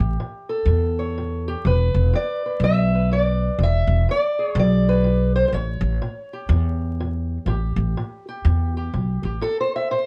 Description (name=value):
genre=acoustic country blues, solo or duo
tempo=124 BPM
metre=4/4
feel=swing 61% on 8ths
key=A mixolydian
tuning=A4 = 444 Hz
part: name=fingerpicked steel-string acoustic guitar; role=melody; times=0.0-10.1 s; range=A2 to E5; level=-26 LUFS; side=equal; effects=none
part: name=upright bass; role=bass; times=0.0-9.4 s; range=E1 to E2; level=-22 LUFS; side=equal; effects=none
room=light reverb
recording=vinyl crackle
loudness=-21 LUFS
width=mono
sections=0.0-9.4 A section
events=none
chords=0.0 A7; 1.6 E7; 5.5 A7; 9.4 A5